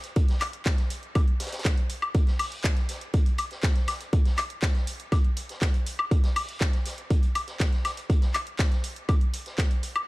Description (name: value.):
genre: house.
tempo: 121 BPM.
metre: 4/4.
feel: straight.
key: none.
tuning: none.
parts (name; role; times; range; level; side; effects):
pop drum kit; drums; 0.0-10.1 s; handclaps, hi-hat, woodblock; -31 LUFS; left 1 dB; studio ambience, sidechain pumping on hats, sidechain pumping on cymbals, sidechain pumping on perc.
vintage drum kit; drums; 0.0-9.9 s; hi-hat, snare drum; -41 LUFS; equal; sidechain pumping on hats, high-pass filter on hats, studio ambience, high-pass filter on snare, high-pass filter on room.
electronic kick drum; drums; 0.2-9.7 s; none; -23 LUFS; equal; studio ambience.
room: studio reverb.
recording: dark, warm production.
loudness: -24 LUFS.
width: side -21 dB against mid.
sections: 0.0-10.1 A section.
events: none.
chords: none.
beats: | 0.16 0.66 1.16 1.65 | 2.15 2.64 3.14 3.63 | 4.13 4.63 5.12 5.62 | 6.11 6.61 7.11 7.60 | 8.10 8.59 9.09 9.59.